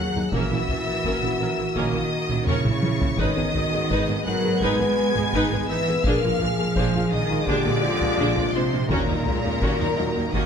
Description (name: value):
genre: cinematic, hybrid orchestral and electronic film score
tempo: 84 BPM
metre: 4/4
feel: straight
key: unclear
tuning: A4 = 440 Hz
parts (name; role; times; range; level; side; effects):
- warm symphonic violin section; melody; 0.0-10.5 s; A#5 to G#6; -31 LUFS; left 4 dB; none
- warm symphonic violin section; second line; 0.0-10.5 s; A#4 to G#5; -31 LUFS; equal; none
- rich symphonic viola section; accompaniment; 0.0-10.5 s; E3 to B4; -29 LUFS; right 1 dB; none
- dark French horn section; sustained chords; 0.0-10.5 s; G#3 to B4; -28 LUFS; left 5 dB; none
- soft round pluck; arpeggios; 0.0-10.4 s; D#3 to A#4; -33 LUFS; left 4 dB; chorus, tape echo
- rich symphonic cello section; bass; 0.0-10.5 s; A#2 to G#3; -27 LUFS; right 2 dB; none
- rich symphonic double bass section; bass; 0.0-10.4 s; G#1 to D#2; -29 LUFS; right 4 dB; none
- felt-muted upright piano; texture; 0.0-10.5 s; C#4 to D#5; -38 LUFS; left 4 dB; none
- bright trombone section; sustained chords; 0.3-10.5 s; B2 to B3; -34 LUFS; right 4 dB; none
- taiko ensemble; drums; 0.3-10.5 s; none; -29 LUFS; equal; none
room: moderate concert hall reverb, RT60 1.9 s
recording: none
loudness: -20 LUFS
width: side -7 dB against mid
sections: 0.0-10.5 A section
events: drum fill 2.5-3.2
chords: 0.3 A#dim; 3.2 G#m; 6.0 A#7; 8.9 D#m7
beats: | 0.34 1.05 1.76 2.48 | 3.19 3.91 4.62 5.33 | 6.05 6.76 7.48 8.19 | 8.91 9.62 10.34